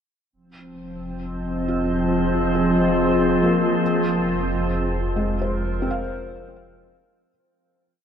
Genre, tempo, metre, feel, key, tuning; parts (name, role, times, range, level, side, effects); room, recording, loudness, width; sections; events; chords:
ambient; 69 BPM; 4/4; straight; F minor; A4 = 440 Hz
warbly tape-like pad; sustained chords; 0.3-7.3 s; F3 to Eb5; -24 LUFS; equal; chorus, built-in reverb
round analog bass; bass; 0.3-7.2 s; F1; -30 LUFS; equal
organ-like drone; drone; 0.9-7.4 s; F3 to C4; -22 LUFS; equal; ensemble chorus, built-in reverb
felt-muted upright piano; arpeggios; 1.7-8.0 s; Ab3 to F5; -30 LUFS; equal; ping-pong delay
wet huge ambient reverb, RT60 7.5 s; dark, warm production, lossy compression artefacts; -19 LUFS; side -8 dB against mid
0.3-7.3 A section
fade-in on ambient pad 0.3-7.3; fade-in on felt piano 0.3-7.3; fade-in on analog synth bass 0.3-7.3; fade-out 3.8-7.3
0.3 Fm7